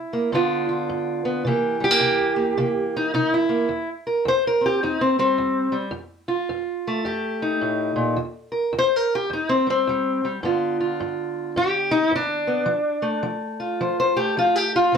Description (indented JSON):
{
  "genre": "acoustic country blues, solo or duo",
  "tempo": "107 BPM",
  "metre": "4/4",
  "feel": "swing 63% on 8ths",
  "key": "unclear",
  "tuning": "A4 = 443 Hz",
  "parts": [
    { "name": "fingerpicked steel-string acoustic guitar", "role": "solo", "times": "0.0-15.0 s", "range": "E2 to C5", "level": "-20 LUFS", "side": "equal", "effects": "slapback echo" }
  ],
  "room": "light reverb",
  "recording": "close, detailed microphones",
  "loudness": "-20 LUFS",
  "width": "side -6 dB against mid",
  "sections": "0.0-1.4 A section; 1.4-15.0 B section",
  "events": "steel-string acoustic guitar solo 1.4-15.0",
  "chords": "0.3 G7; 1.4 C7; 5.9 F7; 8.2 C7; 10.4 G7; 12.7 F"
}